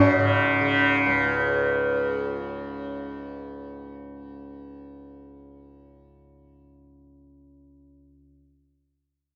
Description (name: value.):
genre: indian classical.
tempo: 153 BPM.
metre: 4/4.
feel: straight.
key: unclear.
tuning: A4 = 445 Hz.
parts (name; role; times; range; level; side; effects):
sitar; melody; 0.0-2.8 s; C#4; -26 LUFS; equal; none.
tanpura; drone; 0.0-8.2 s; C#2 to C#3; -26 LUFS; equal; none.
room: wet large studio reverb, RT60 0.9 s.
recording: none.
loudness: -23 LUFS.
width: mono.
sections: 0.0-1.3 A section.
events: none.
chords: none.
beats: 0.13 0.53 0.92.